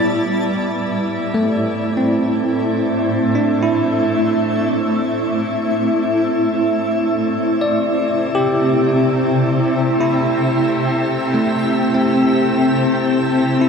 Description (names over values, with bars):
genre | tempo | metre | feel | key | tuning
ambient | 72 BPM | 4/4 | straight | A minor | A4 = 440 Hz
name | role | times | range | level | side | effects
granular cloud pad | sustained chords | 0.0-13.7 s | A2 to G5 | -17 LUFS | equal | built-in reverb
twinkling granular texture | texture | 0.0-0.3, 13.6-13.7 s | A5 to A6 | -32 LUFS | equal | built-in reverb
organ-like drone | drone | 5.0-13.7 s | A3 to A4 | -31 LUFS | right 2 dB | ensemble chorus, built-in reverb
barky tine electric piano | arpeggios | 1.3-13.7 s | A3 to D5 | -20 LUFS | moving between left 3 dB and right 4 dB | auto-pan, tape echo
room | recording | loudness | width
wet shimmer reverb, RT60 7.3 s | none | -15 LUFS | side -6 dB against mid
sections
0.3-13.7 A section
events
fade-in on synth drone 0.3-13.7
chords
0.3 Am; 7.0 C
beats
| 0.31 1.14 1.98 2.81 | 3.64 4.47 5.31 6.14 | 6.97 7.81 8.64 9.47 | 10.31 11.14 11.97 12.81 | 13.64